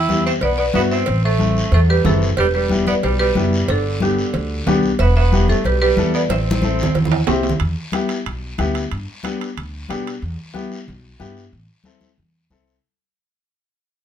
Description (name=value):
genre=latin, cumbia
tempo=184 BPM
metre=4/4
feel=straight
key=E minor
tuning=A4 = 440 Hz
part: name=buzzing marimba with hard mallets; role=melody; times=0.0-7.2 s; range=D4 to G5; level=-21 LUFS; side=right 2 dB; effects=none
part: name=clear tenor saxophone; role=second line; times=0.0-7.2 s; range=D3 to E4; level=-24 LUFS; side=right 4 dB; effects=none
part: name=upright bass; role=bass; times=0.0-12.8 s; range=E1 to B2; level=-20 LUFS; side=equal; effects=none
part: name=warm upright piano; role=accompaniment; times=0.1-12.7 s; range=B3 to A4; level=-23 LUFS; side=left 5 dB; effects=none
part: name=congas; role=percussion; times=0.1-12.7 s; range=none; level=-23 LUFS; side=left 1 dB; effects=none
part: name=guiro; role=percussion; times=0.1-12.8 s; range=none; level=-33 LUFS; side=left 3 dB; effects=none
part: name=cowbell and timbales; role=percussion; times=0.4-10.2 s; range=none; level=-26 LUFS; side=right 6 dB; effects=none
room=light reverb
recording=minimal, uncompressed stereo recording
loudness=-16 LUFS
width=side -9 dB against mid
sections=0.0-7.6 A section; 7.6-12.8 B section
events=drum fill 6.3-7.6; fade-out 7.6-12.8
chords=0.0 Em; 1.1 Am; 2.4 Em; 3.7 G; 5.0 Em; 6.3 Am; 7.6 Em; 8.9 G; 10.2 Em; 11.5 Am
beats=0.09 0.42 0.74 | 1.07 1.40 1.72 2.05 | 2.38 2.70 3.03 3.36 | 3.68 4.01 4.34 4.66 | 4.99 5.32 5.64 5.97 | 6.29 6.62 6.95 7.28 | 7.60 7.93 8.26 8.58 | 8.91 9.24 9.56 9.89 | 10.22 10.55 10.87 11.20 | 11.53 11.85 12.18 12.51